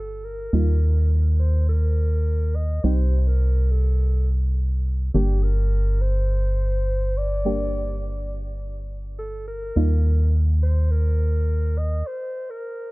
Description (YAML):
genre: dance-pop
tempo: 104 BPM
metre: 4/4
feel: straight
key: unclear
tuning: A4 = 435 Hz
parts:
  - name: bright alto saxophone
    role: melody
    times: 0.0-12.9 s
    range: G4 to Eb5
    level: -32 LUFS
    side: left 1 dB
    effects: digital delay
  - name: deep mellow chord stab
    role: accompaniment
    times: 0.0-12.0 s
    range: G3 to G4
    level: -30 LUFS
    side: right 1 dB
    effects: chorus
  - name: organ-like FM bass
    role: bass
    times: 0.0-12.0 s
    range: G1 to Eb2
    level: -20 LUFS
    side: equal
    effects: none
room: studio reverb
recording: dark, warm production, low-pass filter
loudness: -19 LUFS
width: side -22 dB against mid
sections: 0.0-12.9 A section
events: filter sweep 0.0-12.9; stop 12.1-12.9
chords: 0.0 Gm; 0.5 Ebadd9; 2.8 Cm; 5.1 Gm; 9.8 Ebadd9; 12.1 N.C.